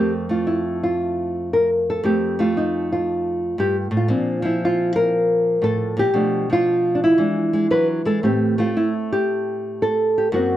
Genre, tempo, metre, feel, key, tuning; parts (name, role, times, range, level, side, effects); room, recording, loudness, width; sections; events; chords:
solo jazz; 115 BPM; 4/4; swing 67% on 8ths, rubato; F major; A4 = 439 Hz
nylon-string guitar; solo; 0.0-10.6 s; F2 to B4; -18 LUFS; equal
light reverb; dark, warm production; -18 LUFS; side -12 dB against mid
0.0-10.6 A section
0.0 Fmaj7; 2.0 F7; 4.1 Bbmaj9; 6.1 Bm7b5; 7.2 E7; 8.2 Am7